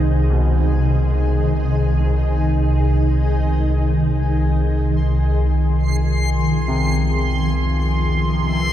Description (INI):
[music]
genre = dark ambient drone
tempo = free time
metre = none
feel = none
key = unclear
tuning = A4 = 440 Hz
[part]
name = granular cloud pad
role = sustained chords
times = 0.0-8.7 s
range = F3 to E5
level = -25 LUFS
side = equal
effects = built-in reverb, shimmer reverb
[part]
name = warm grand piano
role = arpeggios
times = 0.0-8.7 s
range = C2 to C3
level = -30 LUFS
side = right 2 dB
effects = tape echo, shimmer reverb
[part]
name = deep rumbling drone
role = drone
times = 0.0-8.7 s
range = C2 to Eb3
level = -16 LUFS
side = equal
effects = built-in reverb, phaser
[part]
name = backwards swelling texture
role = texture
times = 5.1-8.7 s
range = C6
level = -26 LUFS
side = right 1 dB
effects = built-in reverb, shimmer reverb
[sound]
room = moderate huge ambient reverb, RT60 7.8 s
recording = none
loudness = -16 LUFS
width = side -11 dB against mid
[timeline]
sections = 0.0-8.7 A section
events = none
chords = 0.0 Ab; 4.5 Fm